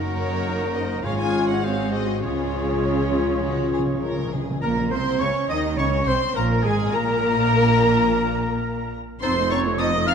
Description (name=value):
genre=quick classical-period movement for symphony orchestra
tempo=104 BPM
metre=4/4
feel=straight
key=Db major, Bb minor from 4.6 s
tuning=A4 = 439 Hz
part: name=clear clarinet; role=second line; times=0.0-10.1 s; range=Eb4 to Eb5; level=-32 LUFS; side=left 2 dB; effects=none
part: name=rich chamber violin section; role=second line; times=0.0-10.1 s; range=F4 to F5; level=-32 LUFS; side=left 2 dB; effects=none
part: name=warm oboe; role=second line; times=0.0-10.1 s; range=Ab4 to Eb5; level=-33 LUFS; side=right 2 dB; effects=none
part: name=warm studio viola section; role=accompaniment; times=0.0-10.1 s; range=Eb3 to F4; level=-27 LUFS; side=right 1 dB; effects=none
part: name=dark French horn section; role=sustained chords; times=0.0-10.1 s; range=Ab3 to Gb4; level=-28 LUFS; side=left 6 dB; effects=none
part: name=rich chamber cello section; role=bass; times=0.0-10.1 s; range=F2 to Eb3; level=-28 LUFS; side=right 3 dB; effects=none
part: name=rich studio double bass section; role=bass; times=0.0-10.1 s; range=F1 to Eb2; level=-28 LUFS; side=right 3 dB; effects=none
part: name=rich chamber violin section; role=melody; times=0.2-10.1 s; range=Db5 to F6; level=-29 LUFS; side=left 5 dB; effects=none
part: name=silver concert flute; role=second line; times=0.2-10.1 s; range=Ab4 to F6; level=-31 LUFS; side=left 1 dB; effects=none
part: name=timpani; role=percussion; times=1.1-4.6 s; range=Ab2 to Db3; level=-32 LUFS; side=equal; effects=none
part: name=warm trumpet section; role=stabs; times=4.6-10.1 s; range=Ab4 to F5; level=-28 LUFS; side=right 2 dB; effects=none
room=wet concert hall reverb, RT60 2.3 s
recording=dark, warm production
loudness=-19 LUFS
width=side -7 dB against mid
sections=0.0-4.6 A section; 4.6-10.1 B section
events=timpani fill 2.2-4.6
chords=0.0 Ebm/Gb; 1.0 Db/Ab; 1.6 Ab7; 2.2 Db; 4.6 Bbm; 6.9 N.C.; 9.2 F7